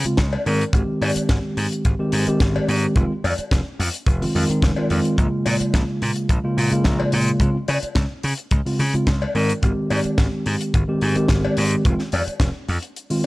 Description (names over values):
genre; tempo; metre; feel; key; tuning
nu-disco, nu disco; 108 BPM; 4/4; straight; unclear; A4 = 437 Hz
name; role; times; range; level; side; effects
mellow tine electric piano; accompaniment; 0.0-13.2 s; Db3 to Bb4; -21 LUFS; equal; vintage 12-bit sampler grit, sidechain pumping, tape echo
slap bass; bass; 0.0-12.8 s; F1 to Db3; -22 LUFS; equal; none
tight funk drum kit; drums; 0.0-13.3 s; hi-hat, snare drum; -28 LUFS; left 1 dB; small room ambience
kick drum; drums; 0.2-12.5 s; none; -19 LUFS; equal; small room ambience
cowbell; percussion; 0.3-12.2 s; none; -28 LUFS; left 3 dB; none
room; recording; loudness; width
light reverb; dry, gritty hardware recording, cassette tape; -18 LUFS; side -20 dB against mid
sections
0.0-13.3 A section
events
none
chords
0.5 Abmaj7; 3.0 Fm7; 5.2 Bbm7; 7.4 Dbmaj7; 9.3 Abmaj7; 11.8 Fm7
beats
0.18 | 0.74 1.29 1.85 2.40 | 2.96 3.52 4.07 4.63 | 5.18 5.74 6.29 6.85 | 7.41 7.96 8.52 9.07 | 9.63 10.18 10.74 11.29 | 11.85 12.40 12.96